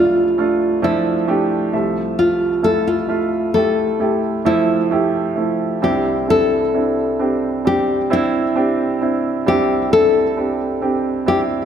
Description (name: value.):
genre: pop ballad.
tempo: 66 BPM.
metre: 4/4.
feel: straight.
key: C major.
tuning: A4 = 440 Hz.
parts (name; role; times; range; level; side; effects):
nylon-string guitar; melody; 0.0-11.4 s; E4 to A4; -18 LUFS; left 1 dB; none.
warm baby grand piano; accompaniment; 0.0-11.7 s; C2 to E5; -18 LUFS; right 2 dB; none.
room: moderate scoring stage reverb, RT60 1.5 s.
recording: none.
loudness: -15 LUFS.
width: side -8 dB against mid.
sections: 0.0-11.7 A section.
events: none.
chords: 0.0 Dm/C; 1.7 Fmaj7/C; 5.8 Cadd9.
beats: 0.38 1.28 | 2.18 3.09 4.00 4.91 | 5.83 6.74 7.65 8.56 | 9.46 10.36 11.26.